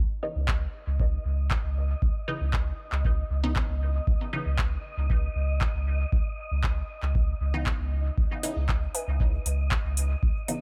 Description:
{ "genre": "dub techno", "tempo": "117 BPM", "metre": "4/4", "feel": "straight", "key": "C# minor", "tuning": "A4 = 439 Hz", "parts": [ { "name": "pure sine sub bass", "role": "bass", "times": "0.0-10.3 s", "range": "C#2", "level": "-30 LUFS", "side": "equal", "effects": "sidechain pumping" }, { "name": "wind-like tuned noise texture", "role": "texture", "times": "0.7-10.6 s", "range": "D#5", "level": "-44 LUFS", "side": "equal", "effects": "built-in reverb, sidechain pumping" }, { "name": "filtered dub chord stab", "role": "stabs", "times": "0.2-10.6 s", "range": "C#3 to D#4", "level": "-38 LUFS", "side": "equal", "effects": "phaser, sidechain pumping, dub echo" }, { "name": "booming analog drum machine", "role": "drums", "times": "0.5-10.6 s", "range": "handclaps, hi-hat", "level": "-35 LUFS", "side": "equal", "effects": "none" }, { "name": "electronic kick drum", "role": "drums", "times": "0.5-10.3 s", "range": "none", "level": "-29 LUFS", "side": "equal", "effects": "none" }, { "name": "warbly dusty pluck", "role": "riff", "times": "8.9-9.1 s", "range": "B4 to G#5", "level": "-42 LUFS", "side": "equal", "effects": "chorus, sidechain pumping, dub echo" } ], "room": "little or no reverb", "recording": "none", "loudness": "-27 LUFS", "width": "mono", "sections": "0.0-10.6 A section", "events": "none", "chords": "0.0 C#m9", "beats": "0.48 1.00 1.51 | 2.02 2.54 3.05 3.56 | 4.07 4.59 5.10 5.61 | 6.12 6.64 7.15 7.66 | 8.18 8.69 9.20 9.71 | 10.23" }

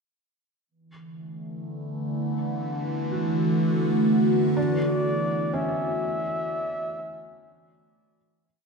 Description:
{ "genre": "ambient", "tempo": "62 BPM", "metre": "4/4", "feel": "straight", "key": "unclear", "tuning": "A4 = 436 Hz", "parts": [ { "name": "evolving wavetable pad", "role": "sustained chords", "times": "0.7-8.4 s", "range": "D3 to F#4", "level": "-24 LUFS", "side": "equal", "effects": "phaser, built-in reverb" }, { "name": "analog drone", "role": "drone", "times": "1.8-8.5 s", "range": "E3 to B3", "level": "-35 LUFS", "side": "left 1 dB", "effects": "chorus" }, { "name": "felt-muted upright piano", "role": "arpeggios", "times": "3.1-8.7 s", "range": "C#4 to F#4", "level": "-36 LUFS", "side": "equal", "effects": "tape echo" }, { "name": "mellow flugelhorn", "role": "melody", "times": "4.6-8.0 s", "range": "D5 to E5", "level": "-29 LUFS", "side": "equal", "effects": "none" } ], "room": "wet plate reverb, RT60 2.8 s", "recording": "echo-heavy mix", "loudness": "-23 LUFS", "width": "side -4 dB against mid", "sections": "0.7-8.4 A section", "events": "fade-in on felt piano 0.7-8.4; fade-in on synth drone 0.7-8.4; filter sweep on ambient pad 0.7-8.4; fade-out 4.6-8.4", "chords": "0.7 Esus2; 4.6 Dadd9", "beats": "| 0.70 1.67 2.64 3.61 | 4.57 5.54 6.51 7.48" }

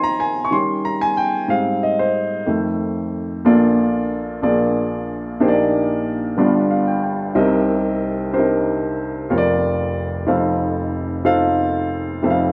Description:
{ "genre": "gospel", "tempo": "62 BPM (dotted quarters)", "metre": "6/8", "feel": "straight", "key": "Bb major from 3.5 s", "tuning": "A4 = 444 Hz", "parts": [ { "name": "warm upright piano", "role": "solo", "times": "0.0-12.5 s", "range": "F1 to Db6", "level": "-19 LUFS", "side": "equal", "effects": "none" } ], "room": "wet large studio reverb, RT60 1.3 s", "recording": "band playing live in one room", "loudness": "-19 LUFS", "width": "mono", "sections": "0.0-3.5 A section; 3.5-12.5 B section", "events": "upright piano solo 0.0-3.5; upright piano fill 6.4-7.4", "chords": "0.0 Bbm11/Eb; 0.5 Eb7; 1.5 Abmaj7; 2.5 F7; 3.5 Bbmaj7; 4.4 Bb7; 5.4 Ebmaj7/Bb; 6.4 G7; 7.4 Cm7; 9.3 Bb/F; 10.3 F7", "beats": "0.53 | 1.51 2.48 | 3.46 4.43 | 5.41 6.38 | 7.36 8.33 | 9.31 10.28 | 11.26 12.23" }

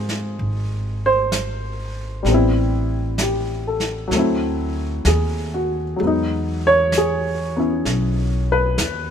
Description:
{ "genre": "jazz ballad", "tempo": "64 BPM", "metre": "4/4", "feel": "swing 69% on 8ths", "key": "unclear", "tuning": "A4 = 440 Hz", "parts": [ { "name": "warm baby grand piano", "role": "accompaniment", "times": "0.0-9.1 s", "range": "F3 to Db5", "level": "-20 LUFS", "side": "equal", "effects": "none" }, { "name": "upright bass", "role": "bass", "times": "0.0-9.1 s", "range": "Ab1 to Ab2", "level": "-23 LUFS", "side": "equal", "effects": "none" }, { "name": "vintage brush drum kit", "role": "drums", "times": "0.1-9.1 s", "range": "brushed snare drum, hi-hat, snare drum", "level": "-27 LUFS", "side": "right 2 dB", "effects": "none" } ], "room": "little or no reverb", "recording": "minimal, uncompressed stereo recording", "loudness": "-18 LUFS", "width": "side -8 dB against mid", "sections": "0.0-9.1 A section", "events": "none", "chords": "0.0 Dbmaj9 (rootless); 2.3 Am7; 4.1 D9; 6.0 Emaj7", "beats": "0.40 1.32 | 2.25 3.18 4.11 5.05 | 5.99 6.92 7.86 8.79" }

